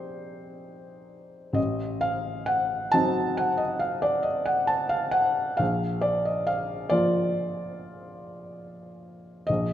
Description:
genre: classical, romantic nocturne for solo piano.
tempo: 42-48 BPM (dotted quarters).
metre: 9/8.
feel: rubato.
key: Bb major.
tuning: A4 = 440 Hz.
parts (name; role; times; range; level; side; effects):
felt-muted upright piano; solo; 0.0-9.7 s; A1 to A5; -24 LUFS; equal; none.
room: wet recital hall reverb, RT60 1.8 s.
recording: minimal, uncompressed stereo recording.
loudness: -23 LUFS.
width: side -11 dB against mid.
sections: 0.0-9.7 A section.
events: none.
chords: 0.0 Cm7/Bb; 1.6 Adim7; 5.6 Bb.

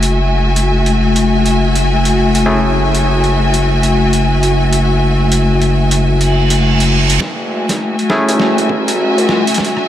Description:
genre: glitch hop.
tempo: 101 BPM.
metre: 4/4.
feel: swing 63% on 16ths.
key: F# minor.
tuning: A4 = 435 Hz.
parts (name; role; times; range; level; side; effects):
clear studio string section; sustained chords; 0.0-9.9 s; A3 to G#5; -14 LUFS; left 2 dB; sidechain pumping, low-pass filter.
overdriven clav; stabs; 0.0-9.9 s; A3 to G#4; -19 LUFS; equal; vintage 12-bit sampler grit, sidechain pumping, diffuse ambient delay.
gritty driven synth bass; bass; 0.0-9.4 s; F#1 to C#2; -14 LUFS; equal; high-pass filter.
boom bap sampler-style drum kit; drums; 0.0-9.9 s; hi-hat, rim click, snare drum; -20 LUFS; right 1 dB; overdrive.
reverse cymbal and riser; sound effects; 6.2-9.9 s; none; -21 LUFS; right 4 dB; none.
electronic kick drum; drums; 7.2-9.7 s; none; -26 LUFS; equal; overdrive, high-pass filter on kick.
room: wet church reverb, RT60 3.3 s.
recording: dreamy mix soaked in reverb.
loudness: -11 LUFS.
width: side -11 dB against mid.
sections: 0.0-7.2 A section; 7.2-9.9 B section.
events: reverse cymbal 6.2-7.2; build-up 7.2-9.9; drum fill 7.2-9.9.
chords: 0.0 F#m9.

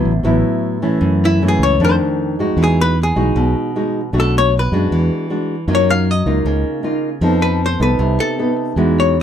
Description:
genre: bossa nova.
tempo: 155 BPM.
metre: 4/4.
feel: straight.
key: unclear.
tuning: A4 = 440 Hz.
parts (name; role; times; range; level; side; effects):
nylon-string guitar; accompaniment; 0.0-9.2 s; F2 to A4; -17 LUFS; equal; none.
fingered electric bass; bass; 0.1-9.2 s; A1 to F#2; -16 LUFS; equal; none.
archtop guitar, miked and amplified; melody; 1.3-9.2 s; E4 to E#5; -18 LUFS; left 4 dB; none.
room: light reverb.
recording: dark, warm production.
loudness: -14 LUFS.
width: side -9 dB against mid.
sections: 0.0-9.2 A section.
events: hollow-body jazz guitar solo 0.0-9.2.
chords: 0.0 D69; 1.0 F#m7; 1.8 F6; 2.6 Emaj9; 4.1 Bm7; 4.9 E9; 5.7 F#6; 7.2 F7#11.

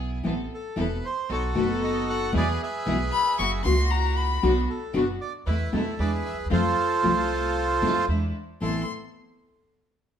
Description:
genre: tango.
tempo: 115 BPM.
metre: 4/4.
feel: rubato.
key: A harmonic minor.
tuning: A4 = 440 Hz.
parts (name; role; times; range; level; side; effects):
rich chamber string section; stabs; 0.0-8.8 s; G#3 to A4; -32 LUFS; right 2 dB; none.
upright bass; bass; 0.0-8.8 s; E1 to F2; -28 LUFS; right 1 dB; none.
nylon-string guitar; accompaniment; 0.2-8.8 s; A2 to F#4; -27 LUFS; left 3 dB; none.
bandoneon; melody; 0.5-8.9 s; E4 to F#5; -27 LUFS; right 2 dB; none.
warm violin; second line; 3.1-4.6, 8.6-8.9 s; A#5 to C#6; -26 LUFS; left 5 dB; none.
room: moderate stone room reverb, RT60 1.1 s.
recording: band playing live in one room.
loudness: -23 LUFS.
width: side -9 dB against mid.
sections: 0.0-8.6 A section; 8.6-10.2 B section.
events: none.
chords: 0.2 Amadd9; 1.3 B7; 2.3 E; 3.4 F#7; 4.4 Bm; 5.5 Am/E; 6.0 E7; 6.5 F; 8.1 E7; 8.6 Amadd9.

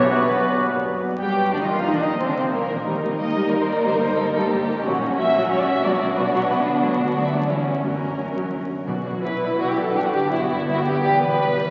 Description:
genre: classical.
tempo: 159-183 BPM.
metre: 3/4.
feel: straight.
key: G minor, B minor from 4.9 s.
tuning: A4 = 440 Hz.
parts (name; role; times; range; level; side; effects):
rich chamber violin section; melody; 0.0-11.7 s; G4 to G5; -30 LUFS; equal; none.
clear clarinet; second line; 0.0-0.7 s; B3; -32 LUFS; equal; none.
mellow hollow silver concert flute; second line; 0.0-0.7 s; D6; -32 LUFS; equal; none.
warm oboe; second line; 0.0-0.7 s; F#4; -31 LUFS; equal; none.
warm symphonic violin section; second line; 0.0-11.7 s; Bb3 to C#5; -25 LUFS; equal; none.
warm bassoon; accompaniment; 0.0-0.7 s; F#3; -37 LUFS; equal; none.
mellow French horn section; sustained chords; 0.0-0.7 s; none; barely audible; none; none.
concert harp; arpeggios; 0.0-11.7 s; E2 to Eb5; -31 LUFS; equal; none.
rich symphonic cello section; bass; 0.0-11.6 s; D2 to G3; -34 LUFS; equal; none.
rich symphonic double bass section; bass; 0.0-11.7 s; E1 to G2; -37 LUFS; equal; none.
timpani; percussion; 0.0-0.3, 8.9-9.4 s; B2; -37 LUFS; equal; none.
warm studio viola section; accompaniment; 1.2-11.7 s; F#3 to G4; -28 LUFS; equal; none.
room: wet cathedral reverb, RT60 4.0 s.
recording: very old 78 rpm record, vinyl crackle, nothing above 7.6 kHz.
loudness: -21 LUFS.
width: mono.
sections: 0.8-8.9 A section; 8.9-11.7 B section.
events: none.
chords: 0.0 Bm; 0.8 Gm; 2.9 Eb; 3.9 Eb/G; 4.9 F#7/A#; 5.8 Bm; 6.8 Bm/D; 7.5 C#dim/E; 7.8 F#; 8.9 Bm; 10.0 G; 11.0 Em7.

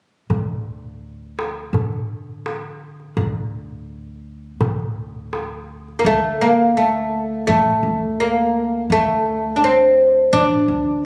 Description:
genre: Arabic maqam ensemble.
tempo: 84 BPM.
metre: 4/4.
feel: straight.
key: unclear.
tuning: A4 = 441 Hz.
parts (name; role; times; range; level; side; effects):
upright bass; bass; 0.3-11.1 s; A1 to D3; -31 LUFS; equal; none.
darbuka; percussion; 0.3-6.0 s; none; -26 LUFS; equal; none.
oud; melody; 6.0-11.0 s; A3 to D4; -17 LUFS; equal; none.
room: moderate recital hall reverb, RT60 1.6 s.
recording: recorded on a phone in the room, club reverb.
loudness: -19 LUFS.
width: mono.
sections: 0.3-6.0 A section; 6.0-11.1 B section.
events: none.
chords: none.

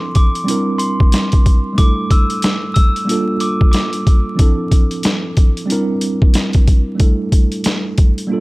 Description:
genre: hip hop, boom-bap hip-hop.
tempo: 92 BPM.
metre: 4/4.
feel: swing 60% on 16ths.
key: unclear.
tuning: A4 = 440 Hz.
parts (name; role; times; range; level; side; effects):
mellow tine electric piano; accompaniment; 0.0-8.4 s; F3 to Bb4; -20 LUFS; right 2 dB; medium stereo tremolo, cassette tape, high-pass filter, low-pass filter.
boom bap sampler-style drum kit; drums; 0.1-8.3 s; hi-hat, kick drum, snare drum; -12 LUFS; equal; overdrive.
glockenspiel with rubber mallets; melody; 0.2-4.0 s; C6 to E6; -23 LUFS; equal; high-pass filter, low-pass filter.
room: little or no reverb.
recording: vinyl crackle.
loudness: -12 LUFS.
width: side -22 dB against mid.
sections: 0.0-8.4 A section.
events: none.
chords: 0.5 C7; 1.8 A7sus4; 3.1 Gm7; 4.4 Dm7; 5.7 C7; 7.0 A7sus4.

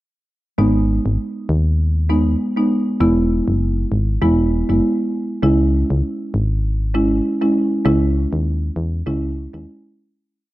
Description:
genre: dancehall.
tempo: 99 BPM.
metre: 4/4.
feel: swing 56% on 16ths.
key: unclear.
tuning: A4 = 440 Hz.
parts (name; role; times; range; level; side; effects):
marimba with medium mallets; accompaniment; 0.6-9.7 s; G#3 to E4; -18 LUFS; right 1 dB; none.
solid FM bass; bass; 0.6-9.7 s; E1 to E2; -18 LUFS; equal; none.
room: light reverb, small room ambience.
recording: worn, warbling old tape, cassette tape, warbly pitch drift.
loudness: -16 LUFS.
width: side -16 dB against mid.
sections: 0.6-10.3 verse.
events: fade-out 7.9-10.3.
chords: 0.6 G#m; 3.0 E; 5.4 C#m.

